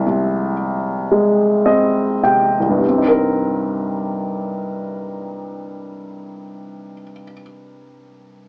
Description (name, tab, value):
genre	folk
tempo	32-40 BPM (dotted quarters)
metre	6/8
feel	straight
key	C minor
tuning	A4 = 440 Hz
part	warm grand piano	accompaniment	0.0-8.5 s	C2 to G5	-16 LUFS	equal	none
room	wet studio reverb, RT60 0.6 s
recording	worn, warbling old tape, cassette tape, warbly pitch drift, small speaker sound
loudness	-15 LUFS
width	side -29 dB against mid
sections	0.0-2.8 A section; 2.8-6.5 B section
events	slowing down 0.0-2.8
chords	0.0 Fm; 2.8 Cm7